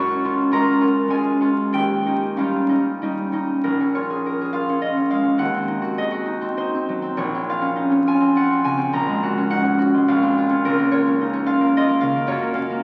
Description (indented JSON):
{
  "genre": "classical, solo harp piece",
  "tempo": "92-110 BPM",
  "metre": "3/4",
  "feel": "rubato",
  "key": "Bb minor",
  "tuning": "A4 = 440 Hz",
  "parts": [
    { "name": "concert harp", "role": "solo", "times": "0.0-12.8 s", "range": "Bb1 to Db6", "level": "-20 LUFS", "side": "equal", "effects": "none" }
  ],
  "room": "wet scoring stage reverb, RT60 1.9 s",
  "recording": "very old 78 rpm record, vinyl crackle",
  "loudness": "-20 LUFS",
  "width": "mono",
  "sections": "0.0-3.7 A section; 3.7-12.8 B section",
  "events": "none",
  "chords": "0.0 Gbmaj9; 1.7 Eb9; 3.7 Bbm7; 5.4 Ebm6; 7.2 Bbmadd9; 8.9 Gbmaj9/Bb; 10.1 Bbmadd9; 10.6 Db6; 12.3 Gbmaj7"
}